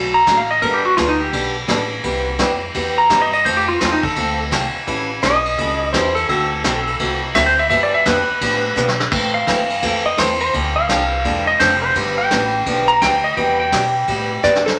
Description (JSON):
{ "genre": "country, western swing", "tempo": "169 BPM", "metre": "4/4", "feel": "swing 63% on 8ths", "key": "C major", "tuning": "A4 = 440 Hz", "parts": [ { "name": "picked acoustic archtop guitar", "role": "accompaniment", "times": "0.0-14.6 s", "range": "C3 to A4", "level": "-25 LUFS", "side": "equal", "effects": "none" }, { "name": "upright bass", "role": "bass", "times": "0.0-14.8 s", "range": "E1 to B2", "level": "-30 LUFS", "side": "equal", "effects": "none" }, { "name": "clean lap steel guitar", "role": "second line", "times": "0.1-14.6 s", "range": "Eb4 to Bb5", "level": "-19 LUFS", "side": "equal", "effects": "none" }, { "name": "vintage brush drum kit", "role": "drums", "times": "0.3-14.8 s", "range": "crash cymbal, hi-hat, kick drum, ride cymbal, snare drum", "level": "-23 LUFS", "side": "equal", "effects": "none" }, { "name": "hollow-body jazz guitar", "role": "melody", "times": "14.4-14.8 s", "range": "A4 to D5", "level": "-16 LUFS", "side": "equal", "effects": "none" } ], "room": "wet studio reverb, RT60 0.7 s", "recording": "none", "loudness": "-17 LUFS", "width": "mono", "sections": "0.0-14.8 A section", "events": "electric slide guitar solo 0.0-14.8; drum fill 8.8-9.1, 14.4-14.8", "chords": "0.0 D; 0.6 Gadd9; 2.0 Cmaj7; 3.5 F; 4.9 A7; 6.3 D7; 7.7 G7; 9.1 Am; 10.5 Dm7; 12.0 G7; 13.4 Cmaj7", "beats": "0.27 | 0.62 0.97 1.33 1.68 | 2.04 2.39 2.75 3.10 | 3.45 3.81 4.16 4.51 | 4.87 5.22 5.58 5.93 | 6.29 6.64 6.99 7.35 | 7.70 8.06 8.41 8.77 | 9.12 9.48 9.83 10.19 | 10.54 10.89 11.25 11.60 | 11.96 12.31 12.66 13.02 | 13.37 13.73 14.08 14.43" }